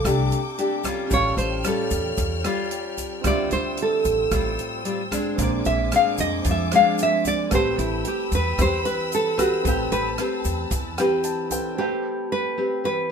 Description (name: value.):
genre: bossa nova.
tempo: 112 BPM.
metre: 4/4.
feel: straight.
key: A minor.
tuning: A4 = 440 Hz.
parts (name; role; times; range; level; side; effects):
nylon-string guitar; melody; 0.0-13.1 s; E4 to F5; -23 LUFS; equal; none.
nylon-string guitar; accompaniment; 0.0-13.1 s; A2 to B4; -26 LUFS; equal; none.
warm concert grand piano; accompaniment; 0.0-13.1 s; C4 to A5; -33 LUFS; right 2 dB; none.
warm symphonic string section; sustained chords; 0.0-11.8 s; A4 to F6; -32 LUFS; left 3 dB; none.
upright bass; bass; 0.0-11.0 s; A1 to F2; -27 LUFS; equal; none.
compact cocktail drum kit; drums; 0.0-11.6 s; hi-hat, kick drum, rim click; -29 LUFS; equal; none.
tube shaker; percussion; 0.1-11.8 s; none; -36 LUFS; left 7 dB; none.
room: light reverb.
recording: minimal, uncompressed stereo recording.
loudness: -20 LUFS.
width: side -6 dB against mid.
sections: 0.0-11.8 A section; 11.8-13.1 B section.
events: nylon-string guitar solo 0.0-11.8; grand piano fill 10.7-11.8.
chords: 0.0 F69; 1.1 A7b13; 3.2 Dm11; 5.4 Bb9; 7.5 Am9.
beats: 0.05 0.58 | 1.11 1.65 2.18 2.71 | 3.25 3.78 4.32 4.85 | 5.38 5.92 6.45 6.98 | 7.51 8.05 8.58 9.11 | 9.65 10.18 10.71 11.25 | 11.78 12.31 12.85.